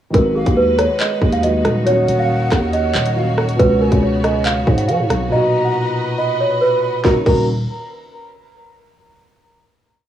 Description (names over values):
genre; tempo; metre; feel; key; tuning
hip hop, drill; 139 BPM; 4/4; half-time; Eb minor; A4 = 443 Hz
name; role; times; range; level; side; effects
small celesta; melody; 0.1-7.5 s; Ab4 to Gb5; -19 LUFS; right 2 dB; cassette tape
dark concert grand piano; accompaniment; 0.1-7.5 s; A#2 to Gb4; -21 LUFS; equal; cassette tape
bright symphonic string section; sustained chords; 0.1-7.2 s; Db3 to D#5; -26 LUFS; left 1 dB; cassette tape
growling 808-style bass; bass; 0.1-7.7 s; Eb1 to F3; -19 LUFS; equal; none
drill drum kit; drums; 0.1-7.4 s; crash cymbal, handclaps, hi-hat, kick drum, rim click, snare drum; -18 LUFS; equal; cassette tape
breathy silver concert flute; second line; 0.4-7.5 s; F5 to B5; -27 LUFS; left 3 dB; cassette tape, analog delay
room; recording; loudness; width
small room ambience; home recording on cassette; -14 LUFS; side -10 dB against mid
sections
0.1-7.0 hook; 7.0-8.8 final chord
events
drums muted 5.3-7.0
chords
0.1 Abm7; 1.9 Ebm7; 3.6 Db7sus4; 5.3 Bmaj7; 7.0 Ebm7